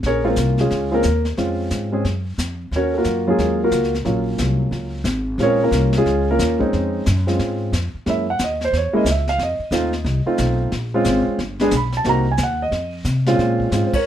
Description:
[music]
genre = jazz piano trio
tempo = 180 BPM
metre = 4/4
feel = swing 63% on 8ths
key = Bb minor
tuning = A4 = 440 Hz
[part]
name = upright bass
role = bass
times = 0.0-14.0 s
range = G1 to C3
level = -22 LUFS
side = equal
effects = none
[part]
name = vintage brush drum kit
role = drums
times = 0.0-14.1 s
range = brushed snare drum, hi-hat, kick drum, ride cymbal, snare drum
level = -28 LUFS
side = left 2 dB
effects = none
[part]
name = warm concert grand piano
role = melody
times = 0.1-14.1 s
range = Bb2 to B5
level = -19 LUFS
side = right 1 dB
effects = none
[sound]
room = light reverb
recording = minimal, uncompressed stereo recording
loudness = -17 LUFS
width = side -10 dB against mid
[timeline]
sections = 0.0-13.4 A section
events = grand piano solo 0.0-13.4; band accent 13.9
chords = 0.0 Bbm9; 2.7 Ebm9; 5.4 Bbm9; 8.1 Gb7; 9.4 F7; 10.7 Bbm9; 11.4 G; 12.1 Cm7b5; 12.7 F5; 13.4 Bbm9

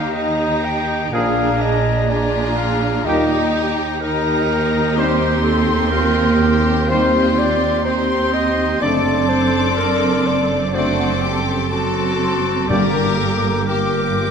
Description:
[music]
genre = classical, slow romantic movement for symphony orchestra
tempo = 62 BPM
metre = 4/4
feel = rubato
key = unclear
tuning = A4 = 440 Hz
[part]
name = rich symphonic violin section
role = melody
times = 0.0-14.3 s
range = Bb5 to D6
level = -27 LUFS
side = left 5 dB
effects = none
[part]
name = clear oboe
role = second line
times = 0.0-14.3 s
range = G5 to A5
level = -28 LUFS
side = right 1 dB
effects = none
[part]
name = mellow hollow flute section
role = second line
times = 0.0-14.3 s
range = Bb5 to D6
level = -28 LUFS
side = left 2 dB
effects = none
[part]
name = warm clarinet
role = second line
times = 0.0-14.3 s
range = F#4 to G5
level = -22 LUFS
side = left 2 dB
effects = none
[part]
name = warm symphonic violin section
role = second line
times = 0.0-14.3 s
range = D4 to Bb4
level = -27 LUFS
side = left 5 dB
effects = none
[part]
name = rich symphonic viola section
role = accompaniment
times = 0.0-14.3 s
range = Bb3 to A4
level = -22 LUFS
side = right 2 dB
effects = none
[part]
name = rich symphonic cello section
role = bass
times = 0.0-14.3 s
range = Eb2 to Eb3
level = -24 LUFS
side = right 4 dB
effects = none
[part]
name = rich symphonic double bass section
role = bass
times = 0.0-14.3 s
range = F#1 to Eb2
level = -23 LUFS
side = right 3 dB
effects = none
[part]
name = mellow French horn section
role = sustained chords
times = 1.1-13.1 s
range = Bb3 to Eb4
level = -26 LUFS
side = left 4 dB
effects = none
[part]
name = mellow trombone section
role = sustained chords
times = 1.1-13.1 s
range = Bb2 to A3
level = -27 LUFS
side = right 2 dB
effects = none
[part]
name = mellow trumpet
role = stabs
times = 1.1-13.1 s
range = G4 to D5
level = -26 LUFS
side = right 1 dB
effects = none
[part]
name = timpani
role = percussion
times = 12.7-14.1 s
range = G2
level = -24 LUFS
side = left 2 dB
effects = none
[sound]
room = wet concert hall reverb, RT60 1.9 s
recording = none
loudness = -15 LUFS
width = side -6 dB against mid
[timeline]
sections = 0.0-14.3 A section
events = none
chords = 0.0 Eb; 1.1 Bb7; 3.1 Eb; 5.0 Cm/Eb; 8.8 D7/F#; 12.7 Gm

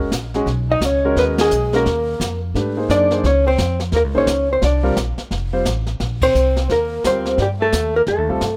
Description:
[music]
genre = jazz, small-group swing and bop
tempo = 174 BPM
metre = 4/4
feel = swing 63% on 8ths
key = unclear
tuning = A4 = 440 Hz
[part]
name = clear concert grand piano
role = accompaniment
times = 0.0-8.4 s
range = G3 to C5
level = -24 LUFS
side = equal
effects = none
[part]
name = upright bass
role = bass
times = 0.0-8.6 s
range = F1 to Ab2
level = -24 LUFS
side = equal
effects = none
[part]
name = jazz brush drum kit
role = drums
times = 0.1-8.6 s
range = brushed snare drum, hi-hat, kick drum, ride cymbal, snare drum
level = -28 LUFS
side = equal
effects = none
[part]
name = vintage hollow-body jazz guitar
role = melody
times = 0.7-8.6 s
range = G4 to D#5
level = -21 LUFS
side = equal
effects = none
[part]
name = breathy alto saxophone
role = second line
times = 0.7-8.6 s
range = G3 to D#4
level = -25 LUFS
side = equal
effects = none
[sound]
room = light reverb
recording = rough home demo mix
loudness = -18 LUFS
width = mono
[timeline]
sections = 0.0-8.6 A section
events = band accent 1.3, 6.2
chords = 0.5 Bmaj9; 1.9 Ebsus2; 2.6 Ab9; 3.2 Db6; 4.6 Csus2; 5.3 Fadd9; 6.0 Bb69; 7.4 Eb

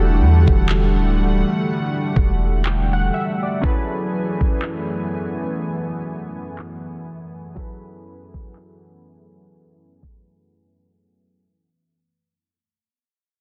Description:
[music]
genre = contemporary R&B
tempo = 61 BPM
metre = 4/4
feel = swing 58% on 16ths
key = unclear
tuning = A4 = 439 Hz
[part]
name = warm analog keys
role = accompaniment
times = 0.0-11.5 s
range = E3 to G5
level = -28 LUFS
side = equal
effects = chorus
[part]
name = lush unison pad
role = sustained chords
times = 0.0-11.5 s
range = F#2 to G#5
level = -27 LUFS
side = equal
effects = chorus
[part]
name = soft 808-style bass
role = bass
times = 0.0-3.1 s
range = D1 to E2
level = -19 LUFS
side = equal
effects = none
[part]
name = smooth R&B drum kit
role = drums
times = 0.5-10.3 s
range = handclaps, kick drum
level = -23 LUFS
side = equal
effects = none
[sound]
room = light reverb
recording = dense, heavily limited modern master, low-pass filter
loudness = -20 LUFS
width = mono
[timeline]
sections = 0.0-11.5 A section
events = fade-out 0.0-11.5; break 10.5-11.5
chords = 0.0 Em11; 3.6 F#m11

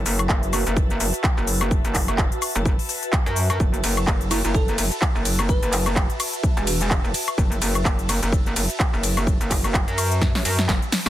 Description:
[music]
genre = bass house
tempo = 127 BPM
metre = 4/4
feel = swing 57% on 16ths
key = F# minor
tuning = A4 = 440 Hz
[part]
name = metallic wobble bass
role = bass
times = 0.0-11.1 s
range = E1 to F#2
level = -23 LUFS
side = equal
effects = chorus, overdrive, sidechain pumping
[part]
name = airy breathy pad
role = texture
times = 0.0-11.1 s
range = F#4 to A5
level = -31 LUFS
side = equal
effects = chorus, phaser, sidechain pumping
[part]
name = big-room dance drum kit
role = drums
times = 0.1-11.1 s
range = handclaps, hi-hat, ride cymbal, shaker, snare drum, woodblock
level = -24 LUFS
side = left 1 dB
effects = overdrive
[part]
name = electronic kick drum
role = drums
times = 0.3-10.8 s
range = none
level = -21 LUFS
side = equal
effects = none
[part]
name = bell-like FM electric piano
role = melody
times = 4.3-6.2 s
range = E4 to B4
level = -29 LUFS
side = right 1 dB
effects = chorus, tape echo
[sound]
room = little or no reverb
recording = dense, heavily limited modern master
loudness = -19 LUFS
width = side -13 dB against mid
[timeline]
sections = 0.0-11.1 A section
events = drum fill 10.2-11.1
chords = 0.0 F#m

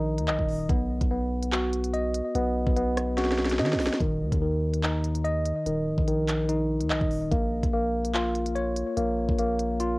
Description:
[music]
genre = hip hop, drill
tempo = 145 BPM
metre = 4/4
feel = half-time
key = Eb minor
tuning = A4 = 440 Hz
[part]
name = tine electric piano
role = arpeggios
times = 0.0-10.0 s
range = Eb3 to Eb5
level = -26 LUFS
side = equal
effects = auto-pan, cassette tape, analog delay
[part]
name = long sustained 808-style bass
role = bass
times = 0.0-10.0 s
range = Db1 to D#3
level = -30 LUFS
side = equal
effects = none
[part]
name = drill drum kit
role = drums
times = 0.2-9.9 s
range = handclaps, hi-hat, kick drum, rim click, snare drum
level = -28 LUFS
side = equal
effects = none
[sound]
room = little or no reverb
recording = home recording on cassette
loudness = -24 LUFS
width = side -22 dB against mid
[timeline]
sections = 0.0-4.0 A section; 4.0-10.0 B section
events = drum fill 3.2-4.0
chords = 0.0 Eb5; 0.7 B; 4.0 Eb5; 7.3 Bbm

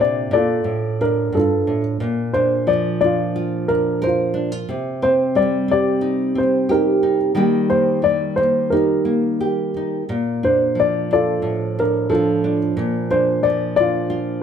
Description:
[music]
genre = acoustic folk-pop ballad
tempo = 89 BPM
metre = 4/4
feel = straight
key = Bb major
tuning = A4 = 440 Hz
[part]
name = dark baby grand piano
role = melody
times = 0.0-14.4 s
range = D4 to D5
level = -18 LUFS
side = equal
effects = none
[part]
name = nylon-string guitar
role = accompaniment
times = 0.0-14.4 s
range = G2 to Bb4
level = -20 LUFS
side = right 1 dB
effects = none
[sound]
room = moderate large studio reverb, RT60 1.2 s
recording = none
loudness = -16 LUFS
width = side -8 dB against mid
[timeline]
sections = 0.0-14.4 A section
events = none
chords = 0.0 Bbadd9; 0.7 Dm/A; 2.0 Bb; 4.7 Cm; 7.3 Eb; 10.1 Bb; 11.4 Dm/A; 12.8 Bb

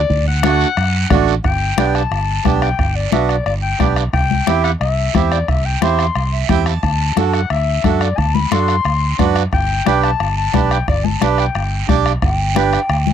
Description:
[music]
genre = latin, cumbia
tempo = 178 BPM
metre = 4/4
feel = straight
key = G major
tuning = A4 = 439 Hz
[part]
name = mellow clarinet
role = second line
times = 0.0-12.0 s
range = D5 to C6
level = -20 LUFS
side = left 8 dB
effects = none
[part]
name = fingered electric bass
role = bass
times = 0.0-13.1 s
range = G1 to F#2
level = -18 LUFS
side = equal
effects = none
[part]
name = bombo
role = percussion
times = 0.1-13.1 s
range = none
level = -21 LUFS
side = equal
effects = none
[part]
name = guiro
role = percussion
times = 0.1-13.1 s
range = none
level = -29 LUFS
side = right 16 dB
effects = none
[part]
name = congas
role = percussion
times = 0.3-13.1 s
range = none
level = -20 LUFS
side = left 14 dB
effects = none
[part]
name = accordion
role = accompaniment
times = 0.4-12.8 s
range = A3 to A5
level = -17 LUFS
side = right 12 dB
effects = none
[part]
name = mellow hollow jazz flute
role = melody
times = 12.2-13.1 s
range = G5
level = -19 LUFS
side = equal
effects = none
[sound]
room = little or no reverb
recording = dry, close 1970s-style studio recording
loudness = -14 LUFS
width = side -9 dB against mid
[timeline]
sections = 0.0-1.4 A section; 1.4-12.2 B section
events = clarinet solo 0.0-1.4, 1.4-12.2; accordion fill 6.2-6.8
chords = 0.1 D; 1.4 G; 4.1 C; 6.8 D7; 9.5 G

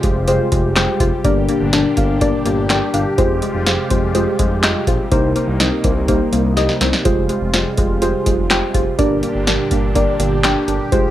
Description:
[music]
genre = synth-pop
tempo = 124 BPM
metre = 4/4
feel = straight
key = F dorian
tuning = A4 = 440 Hz
[part]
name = muted felt-like synth keys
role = accompaniment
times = 0.0-11.1 s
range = D4 to F5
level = -19 LUFS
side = right 1 dB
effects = chorus
[part]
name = brassy analog pad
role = sustained chords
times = 0.0-11.1 s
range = Bb2 to G4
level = -23 LUFS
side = equal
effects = chorus
[part]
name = soft round pluck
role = arpeggios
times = 0.0-11.1 s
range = Ab3 to G5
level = -24 LUFS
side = left 5 dB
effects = chorus, slapback echo
[part]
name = smooth gliding synth bass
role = bass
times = 0.0-11.1 s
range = F1 to C2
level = -21 LUFS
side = equal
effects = none
[part]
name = electro analog drum machine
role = drums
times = 0.0-11.0 s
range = handclaps, hi-hat, kick drum, snare drum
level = -19 LUFS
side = equal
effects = none
[sound]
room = light reverb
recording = none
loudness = -14 LUFS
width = side -12 dB against mid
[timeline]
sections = 0.0-11.1 A section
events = drum fill 6.6-7.1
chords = 0.0 Fmadd9; 1.2 Gm; 3.2 Fmadd9; 5.1 Cm7; 7.1 Fmadd9; 9.0 Gm

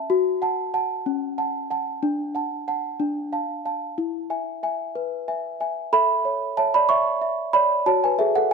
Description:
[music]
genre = classical, lullaby for celesta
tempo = 62 BPM (dotted quarters)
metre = 6/8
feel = straight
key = A major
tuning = A4 = 440 Hz
[part]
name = small celesta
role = solo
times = 0.0-8.5 s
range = C#4 to C#6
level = -21 LUFS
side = right 1 dB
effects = none
[sound]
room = light reverb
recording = close, detailed microphones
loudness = -21 LUFS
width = side -5 dB against mid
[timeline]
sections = 0.0-5.9 A section; 5.9-8.5 B section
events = none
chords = 0.1 F#m; 2.0 D; 3.0 Dm; 4.0 E; 5.9 A; 7.9 F#m

